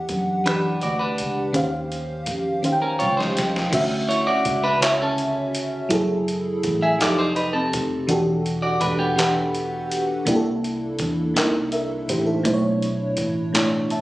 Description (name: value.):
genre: slow six-eight R&B.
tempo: 55 BPM (dotted quarters).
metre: 6/8.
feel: straight.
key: D major.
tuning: A4 = 440 Hz.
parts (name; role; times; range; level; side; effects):
FM electric piano with soft pad layer; accompaniment; 0.0-14.0 s; B2 to A5; -22 LUFS; equal; chorus.
vintage muted fingered electric bass; bass; 0.0-14.0 s; E1 to F#2; -30 LUFS; equal; none.
dusty soul sampler-style drum kit; drums; 0.1-14.0 s; crash cymbal, finger snaps, handclaps, hi-hat, kick drum, snare drum; -26 LUFS; equal; overdrive.
clean electric guitar; second line; 0.5-10.0 s; B3 to E5; -23 LUFS; right 1 dB; none.
room: light reverb.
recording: recorded on a phone in the room, studio reverb, compression.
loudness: -20 LUFS.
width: side -17 dB against mid.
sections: 0.0-3.7 A section; 3.7-14.0 B section.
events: drum fill 2.6-3.7.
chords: 0.0 Em9; 1.5 Eb13; 3.7 Dmaj9; 5.9 F#m9; 7.0 F9; 8.1 Em11; 10.3 C13; 12.5 Bm11.